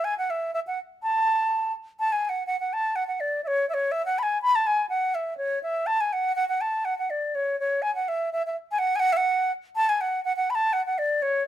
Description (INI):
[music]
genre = celtic folk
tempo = 124 BPM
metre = 2/4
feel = swing 53% on 8ths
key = F# minor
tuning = A4 = 441 Hz
[part]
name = wooden flute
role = solo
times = 0.0-11.5 s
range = C#5 to B5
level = -23 LUFS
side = equal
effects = none
[sound]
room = light reverb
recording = minimal, uncompressed stereo recording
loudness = -23 LUFS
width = side -11 dB against mid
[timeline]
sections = 0.0-2.0 A section; 2.0-9.7 B section; 9.7-11.5 B section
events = none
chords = none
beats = | 0.05 0.54 | 1.02 1.51 | 1.99 2.47 | 2.96 3.44 | 3.93 4.41 | 4.89 5.38 | 5.86 6.35 | 6.83 7.31 | 7.80 8.28 | 8.77 9.25 | 9.73 10.22 | 10.70 11.19